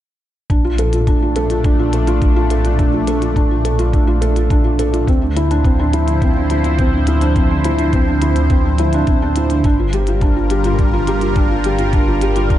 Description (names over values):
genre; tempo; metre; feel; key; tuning
piano and strings electronica; 105 BPM; 4/4; straight; unclear; A4 = 439 Hz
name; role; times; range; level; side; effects
lush unison pad; sustained chords; 0.5-12.6 s; F3 to C5; -22 LUFS; right 1 dB; chorus, phaser
felt-muted upright piano; riff; 0.5-12.6 s; C4 to A4; -18 LUFS; equal; ping-pong delay
dark detuned saw bass; bass; 0.5-12.6 s; G1 to D2; -18 LUFS; equal; sidechain pumping
electronic hi-hat; drums; 0.5-12.6 s; none; -34 LUFS; left 4 dB; none
electronic kick drum; drums; 0.5-12.6 s; none; -15 LUFS; equal; none
room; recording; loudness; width
light reverb, digital ambience; dark, warm production, nothing above 11.0 kHz; -13 LUFS; side -12 dB against mid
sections
0.5-12.6 A section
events
none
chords
0.5 Bbmaj7; 5.1 Dm9; 9.6 Gm7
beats
| 0.50 1.07 1.65 2.22 | 2.79 3.36 3.93 4.50 | 5.08 5.65 6.22 6.79 | 7.36 7.93 8.50 9.07 | 9.65 10.22 10.79 11.36 | 11.93 12.50